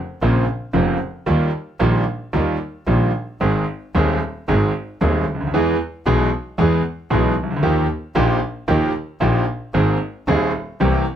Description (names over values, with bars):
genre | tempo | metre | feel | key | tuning
tango | 113 BPM | 4/4 | rubato | Ab major | A4 = 440 Hz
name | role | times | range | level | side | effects
bright concert grand piano | accompaniment | 0.2-11.0 s | Eb1 to Ab4 | -18 LUFS | right 1 dB | none
rich double bass | bass | 0.2-11.0 s | F1 to E2 | -21 LUFS | equal | none
room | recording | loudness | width
light reverb | close, detailed microphones | -17 LUFS | side -9 dB against mid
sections
0.0-11.2 A section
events
none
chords
0.0 Bbmadd9; 1.3 Ebadd9; 3.4 Ab; 5.5 E; 7.6 Ebadd9; 9.7 Abadd9